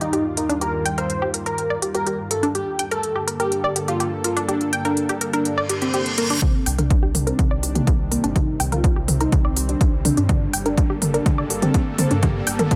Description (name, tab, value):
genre	melodic techno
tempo	124 BPM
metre	4/4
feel	straight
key	unclear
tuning	A4 = 440 Hz
part	fat analog lead	melody	0.0-12.8 s	Bb3 to C5	-28 LUFS	equal	analog chorus, sidechain pumping, tape echo
part	lush unison pad	sustained chords	0.0-12.8 s	Eb2 to A4	-31 LUFS	equal	chorus, sidechain pumping
part	unison pluck	arpeggios	0.0-12.7 s	D4 to G5	-28 LUFS	equal	sidechain pumping, tape echo
part	swarming drone	drone	0.0-6.5 s	G2 to G3	-41 LUFS	equal	built-in reverb, sidechain pumping
part	techno drum kit	drums	0.0-12.8 s	hi-hat, toms	-26 LUFS	equal	sidechain pumping on hats, sidechain pumping on toms
part	reverse cymbal and riser	sound effects	5.6-12.8 s	none	-34 LUFS	equal	none
part	electronic kick drum	drums	6.4-12.8 s	none	-21 LUFS	equal	none
part	round analog bass	bass	6.7-12.8 s	G1 to G2	-29 LUFS	equal	tube saturation, sidechain pumping
room	light reverb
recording	none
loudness	-21 LUFS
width	mono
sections	0.0-6.4 A section; 6.4-12.8 B section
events	reverse cymbal 5.6-6.4; build-up 6.4-12.8; drum fill 6.4-12.8; filter sweep on synth arpeggio sound 6.4-12.8; filter sweep on analog synth lead 6.4-12.8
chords	0.0 Ebadd9; 2.5 Gmadd9; 6.4 Cmadd9; 10.3 Gmadd9